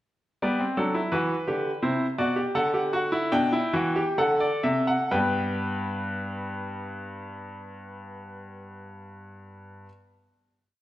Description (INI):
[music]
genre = classical, baroque-style 3-part fugue for grand piano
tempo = 61-88 BPM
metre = 3/4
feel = straight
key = G major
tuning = A4 = 440 Hz
[part]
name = bright baby grand piano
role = solo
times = 0.4-9.9 s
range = G2 to G5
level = -25 LUFS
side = equal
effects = none
[sound]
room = wet recital hall reverb, RT60 1.4 s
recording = none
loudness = -24 LUFS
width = side -14 dB against mid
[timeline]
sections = 0.4-5.1 exposition; 5.1-10.8 final chord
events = slowing down 0.4-6.6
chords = 0.4 G; 1.8 C; 2.6 G/D; 4.2 D7; 5.1 G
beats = | 0.42 1.12 1.82 | 2.55 3.33 4.18 | 5.12 6.10 7.08 | 8.07 9.05